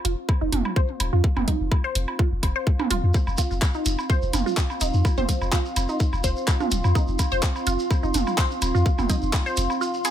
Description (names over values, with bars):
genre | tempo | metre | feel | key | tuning
minimal techno | 126 BPM | 4/4 | swing 54% on 16ths | unclear | A4 = 442 Hz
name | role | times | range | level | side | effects
resonant blip pluck | riff | 0.0-10.1 s | Eb4 to C5 | -29 LUFS | right 2 dB | phaser, sidechain pumping, ping-pong delay
punchy sub bass | bass | 0.0-9.7 s | Eb1 to F2 | -24 LUFS | left 1 dB | sidechain pumping
garage drum kit | drums | 0.0-10.1 s | handclaps, hi-hat | -28 LUFS | equal | overdrive
warbly tape-like pad | texture | 0.0-10.1 s | C4 to C6 | -31 LUFS | equal | chorus, built-in reverb, sidechain pumping
electronic kick drum | drums | 0.3-9.4 s | none | -22 LUFS | equal | overdrive
electronic woodblock and toms | percussion | 0.3-10.1 s | none | -29 LUFS | right 4 dB | ping-pong delay
shekere | percussion | 3.1-10.1 s | none | -35 LUFS | right 2 dB | none
room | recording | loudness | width
little or no reverb | none | -20 LUFS | side -10 dB against mid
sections
0.0-10.1 A section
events
fade-in on ambient pad 0.0-10.1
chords
0.0 F5